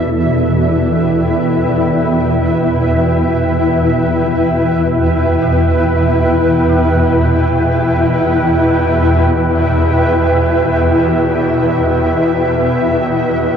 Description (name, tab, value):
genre	dark ambient drone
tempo	free time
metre	none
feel	none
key	E minor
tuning	A4 = 440 Hz
part	granular cloud pad	sustained chords	0.0-13.6 s	E4 to G5	-13 LUFS	equal	built-in reverb, shimmer reverb
part	swarming drone	drone	0.0-13.6 s	E2 to B2	-15 LUFS	equal	built-in reverb
part	dark detuned synth bell	arpeggios	5.4-13.6 s	none	barely audible	none	none
room	wet huge ambient reverb, RT60 9.7 s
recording	worn, warbling old tape, cassette tape, warbly pitch drift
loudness	-11 LUFS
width	side -7 dB against mid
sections	0.0-13.6 A section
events	none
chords	0.0 Em7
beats	free time